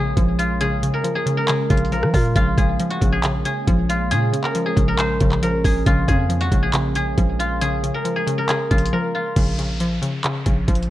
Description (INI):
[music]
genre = hip hop, trap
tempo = 137 BPM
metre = 4/4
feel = half-time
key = Bb minor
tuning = A4 = 436 Hz
[part]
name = guzheng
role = melody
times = 0.0-10.9 s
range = F4 to C5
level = -23 LUFS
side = equal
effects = low-pass filter
[part]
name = hollow square pluck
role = accompaniment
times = 0.0-10.9 s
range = Db3 to F3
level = -24 LUFS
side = left 1 dB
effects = chorus, low-pass filter
[part]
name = warbly tape-like pad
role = sustained chords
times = 0.0-9.3 s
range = Ab3 to Db4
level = -31 LUFS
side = right 2 dB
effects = chorus, built-in reverb
[part]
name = growling 808-style bass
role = bass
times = 0.0-10.9 s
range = Bb1 to F3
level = -22 LUFS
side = equal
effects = none
[part]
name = trap drum kit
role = drums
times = 0.2-10.9 s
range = crash cymbal, handclaps, hi-hat, kick drum, rim click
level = -21 LUFS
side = equal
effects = none
[part]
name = downlifter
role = sound effects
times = 9.4-10.9 s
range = none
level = -34 LUFS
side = equal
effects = none
[sound]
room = digital ambience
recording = worn, warbling old tape, cassette tape, warbly pitch drift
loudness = -17 LUFS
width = side -14 dB against mid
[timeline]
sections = 0.0-9.4 A section; 9.4-10.9 B section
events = break 8.9-9.4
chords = 0.0 Bbm7; 9.4 Bbm